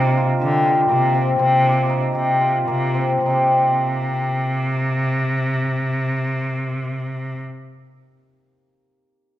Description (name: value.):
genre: contemporary instrumental, chamber music in an uneven meter.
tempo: 216-252 BPM (eighths).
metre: 7/8.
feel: straight.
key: C minor.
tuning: A4 = 440 Hz.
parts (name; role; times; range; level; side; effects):
cimbalom; arpeggios; 0.0-7.5 s; Bb3 to C5; -18 LUFS; left 1 dB; none.
rich cello; bass; 0.0-7.4 s; C3 to D3; -21 LUFS; equal; none.
room: wet scoring stage reverb, RT60 1.6 s.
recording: minimal, uncompressed stereo recording.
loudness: -17 LUFS.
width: side -13 dB against mid.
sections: 0.0-3.2 A section; 3.2-7.1 B section.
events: slowing down 0.0-3.2.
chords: 0.0 F9sus4/C; 3.2 Cm.